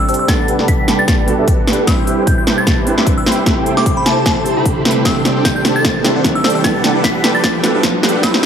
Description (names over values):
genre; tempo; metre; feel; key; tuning
future bass; 151 BPM; 4/4; swing 55% on 16ths, half-time; G major; A4 = 440 Hz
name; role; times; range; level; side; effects
glassy synth bell; melody; 0.0-8.4 s; A5 to B6; -21 LUFS; left 1 dB; chorus, sidechain pumping, dub echo
felt-muted upright piano; accompaniment; 0.0-8.5 s; G3 to B5; -22 LUFS; right 2 dB; sidechain pumping, dub echo
ethereal airy pad; sustained chords; 0.0-8.5 s; B2 to B5; -25 LUFS; right 1 dB; ensemble chorus, built-in reverb, sidechain pumping
riser; sound effects; 2.9-8.5 s; none; -25 LUFS; right 1 dB; none
supersaw chords; riff; 0.1-8.5 s; D4 to B5; -18 LUFS; right 1 dB; phaser, sidechain pumping, low-pass filter
big-room dance drum kit; drums; 0.1-8.5 s; hi-hat, snare drum; -16 LUFS; equal; none
electronic kick drum; drums; 0.3-8.3 s; none; -18 LUFS; equal; none
room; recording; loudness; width
moderate lush hall reverb, RT60 1.8 s, digital ambience; dark, warm production, high-pass filter; -11 LUFS; side -8 dB against mid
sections
0.0-8.5 A section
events
build-up 0.0-8.5; drum fill 0.0-8.5; filter sweep on supersaw synth 0.0-8.5; filter sweep 0.0-8.5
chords
0.3 Gmaj9; 1.9 Cmaj7; 3.5 Am7; 5.1 D7sus4; 6.6 Gmaj9